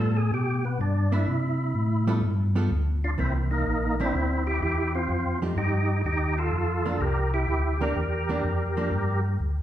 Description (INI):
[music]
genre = soul jazz organ trio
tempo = 126 BPM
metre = 4/4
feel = swing 69% on 8ths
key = C mixolydian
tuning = A4 = 440 Hz
[part]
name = percussive tonewheel organ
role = melody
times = 0.0-9.2 s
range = Bb3 to Bb4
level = -28 LUFS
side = equal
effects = slow rotary speaker, overdrive, chorus vibrato
[part]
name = archtop guitar, miked and amplified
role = accompaniment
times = 0.0-8.9 s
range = E3 to A4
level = -32 LUFS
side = right 2 dB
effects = none
[part]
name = mellow tonewheel organ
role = bass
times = 0.0-9.6 s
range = Bb1 to C3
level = -26 LUFS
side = equal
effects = chorus vibrato, slow rotary speaker
[sound]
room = wet large studio reverb, RT60 1.3 s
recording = heard from further back in the room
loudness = -23 LUFS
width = side -12 dB against mid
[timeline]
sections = 0.0-3.2 A section; 3.2-9.6 B section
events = tonewheel organ solo 0.0-3.2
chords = 0.0 Gadd9; 1.3 C; 2.2 G9; 3.2 C9; 5.1 F9; 7.0 C9; 8.9 Gm